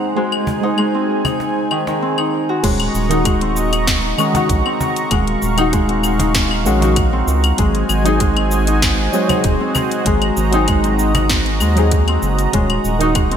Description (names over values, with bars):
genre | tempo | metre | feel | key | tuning
organic downtempo | 97 BPM | 4/4 | straight | Ab mixolydian | A4 = 440 Hz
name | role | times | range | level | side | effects
deep mellow chord stab | accompaniment | 0.0-13.4 s | Eb3 to C5 | -22 LUFS | equal | chorus, sidechain pumping, digital delay
warm analog pad | sustained chords | 0.0-13.4 s | Eb4 to Db6 | -23 LUFS | right 3 dB | chorus, tremolo, sidechain pumping
Celtic harp | arpeggios | 0.0-13.4 s | Eb3 to Gb4 | -19 LUFS | left 2 dB | digital delay
afro-pop drum kit | drums | 0.3-13.4 s | claves, crash cymbal, hi-hat, shaker, snare drum | -22 LUFS | left 2 dB | small room reverb, gated reverb
cajon | percussion | 0.5-11.9 s | none | -27 LUFS | left 1 dB | none
round analog bass | bass | 2.6-13.4 s | Eb1 to Eb2 | -19 LUFS | equal | sidechain pumping
electronic kick drum | drums | 2.6-13.3 s | none | -19 LUFS | equal | small room reverb
room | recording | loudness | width
moderate lush hall reverb, RT60 2.8 s | bright 1980s-style digital production | -14 LUFS | side -8 dB against mid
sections
0.0-2.6 A section; 2.6-13.4 B section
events
none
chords
0.0 Ab7; 2.6 Ebm7; 7.6 Ab7; 12.5 Ebm7